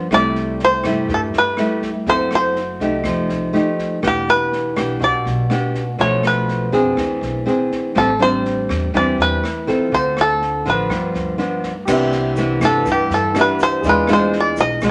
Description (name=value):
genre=bossa nova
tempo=122 BPM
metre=4/4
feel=straight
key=A minor, C major from 11.9 s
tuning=A4 = 435 Hz
part: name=nylon-string guitar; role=accompaniment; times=0.0-14.9 s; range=G2 to A4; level=-22 LUFS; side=equal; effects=none
part: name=bluegrass banjo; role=melody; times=0.1-14.8 s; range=G4 to Eb5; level=-20 LUFS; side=equal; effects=none
part: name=upright bass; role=bass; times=0.1-14.9 s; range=E1 to G2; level=-30 LUFS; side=equal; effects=none
part: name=swinging big-band drum kit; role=drums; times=0.1-14.9 s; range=crash cymbal, kick drum, rim click, snare drum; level=-32 LUFS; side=equal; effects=none
part: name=warm baby grand piano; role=accompaniment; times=11.9-14.9 s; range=G4 to F5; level=-26 LUFS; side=equal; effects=none
part: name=egg shaker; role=percussion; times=11.9-14.9 s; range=none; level=-47 LUFS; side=equal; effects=none
room=moderate studio reverb, RT60 0.7 s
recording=none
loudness=-18 LUFS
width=mono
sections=0.0-11.9 A section; 11.9-14.9 B section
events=five-string banjo solo 11.9-14.9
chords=0.1 C6; 2.1 F#m7b5; 3.0 F9; 4.0 Em7; 6.0 Bm7b5; 7.0 E7b13; 8.0 Am11; 9.9 Dm7; 10.9 G7; 11.9 Cmaj9; 13.8 E7b9